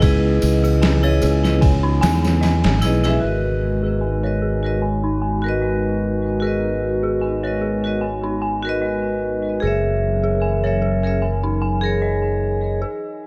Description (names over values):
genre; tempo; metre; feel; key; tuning
trip hop; 75 BPM; 4/4; swing 55% on 16ths; G# minor; A4 = 441 Hz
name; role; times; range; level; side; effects
vibraphone with hard mallets; accompaniment; 0.0-12.8 s; E4 to E5; -25 LUFS; equal; harmonic tremolo, vintage 12-bit sampler grit, tape echo
warbly tape-like pad; sustained chords; 0.0-12.8 s; C#3 to A#4; -29 LUFS; equal; chorus, built-in reverb, vintage 12-bit sampler grit
dark detuned synth bell; arpeggios; 0.0-13.3 s; D#4 to G#5; -29 LUFS; equal; chorus, phaser, low-pass filter, delay
modern bright fingered electric bass; bass; 0.0-12.8 s; F#1 to E2; -23 LUFS; equal; none
trip hop sampler-style drum kit; drums; 0.0-3.2 s; kick drum, ride cymbal, snare drum; -23 LUFS; equal; overdrive
tambourine and triangle; percussion; 0.0-3.2 s; none; -40 LUFS; equal; none
room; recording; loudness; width
light reverb; none; -20 LUFS; mono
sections
0.0-3.2 A section; 3.2-13.3 B section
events
filter sweep on synth bell 3.2-13.3; break 12.8-13.3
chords
0.0 C#m7; 3.2 G#m7; 9.6 F#7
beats
| 0.02 0.82 1.62 2.42 | 3.22 4.02 4.82 5.62 | 6.42 7.22 8.02 8.82 | 9.62 10.42 11.22 12.02 | 12.82